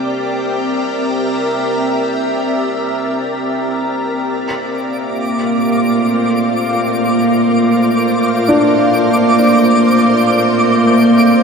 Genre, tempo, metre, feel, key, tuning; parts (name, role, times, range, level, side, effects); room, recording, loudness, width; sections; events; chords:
ambient; free time; Bb lydian; A4 = 440 Hz
soft additive organ-like pad; sustained chords; 0.0-11.4 s; A3 to E5; -13 LUFS; equal; ensemble chorus, built-in reverb, shimmer reverb
twinkling granular texture; texture; 5.0-11.4 s; D6; -19 LUFS; right 1 dB; built-in reverb, shimmer reverb
felt-muted upright piano; arpeggios; 8.5-11.4 s; D4; -16 LUFS; left 1 dB; ping-pong delay, shimmer reverb
wet lush hall reverb, RT60 3.1 s; -12 LUFS; side -5 dB against mid
0.0-11.4 A section
fade-in on ambient pad 0.0-11.4
0.0 C7; 4.3 Bbmaj9